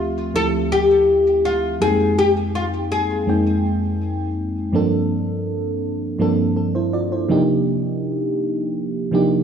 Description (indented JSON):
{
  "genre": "R&B",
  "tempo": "82 BPM",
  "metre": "4/4",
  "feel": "straight",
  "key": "unclear",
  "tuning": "A4 = 445 Hz",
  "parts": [
    { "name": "oud", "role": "melody", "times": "0.0-4.3 s", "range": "F4 to A4", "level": "-18 LUFS", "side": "left 3 dB", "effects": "digital delay" },
    { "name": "mellow FM electric piano", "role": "accompaniment", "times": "0.0-9.4 s", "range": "D2 to G5", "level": "-19 LUFS", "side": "right 1 dB", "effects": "chorus" }
  ],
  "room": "moderate lush hall reverb, RT60 2.4 s",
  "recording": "studio ambience",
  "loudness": "-17 LUFS",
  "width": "side -7 dB against mid",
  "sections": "0.0-9.4 A section",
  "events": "none",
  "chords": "0.0 Dm11; 1.8 Fm11; 4.7 Gm11; 7.3 Cm11"
}